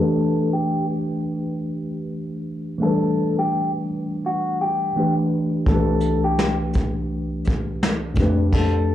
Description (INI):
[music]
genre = lo-fi hip hop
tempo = 84 BPM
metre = 4/4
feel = swing 58% on 16ths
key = G major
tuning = A4 = 440 Hz
[part]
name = electric guitar through a small old amp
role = melody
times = 0.0-8.9 s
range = F#4 to A4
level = -25 LUFS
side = left 2 dB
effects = spring reverb, low-pass filter
[part]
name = mellow tine electric piano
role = accompaniment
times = 0.0-8.9 s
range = C2 to B4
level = -21 LUFS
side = equal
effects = medium stereo tremolo, cassette tape, low-pass filter
[part]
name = vintage brush drum kit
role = drums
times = 5.7-8.7 s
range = crash cymbal, hi-hat, kick drum, snare drum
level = -22 LUFS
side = equal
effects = none
[sound]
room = light reverb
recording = transformer saturation, small room ambience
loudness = -20 LUFS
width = side -12 dB against mid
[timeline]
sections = 0.0-8.9 A section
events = filter sweep 0.0-8.9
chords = 0.0 G; 5.7 Cmaj7; 8.2 Fadd9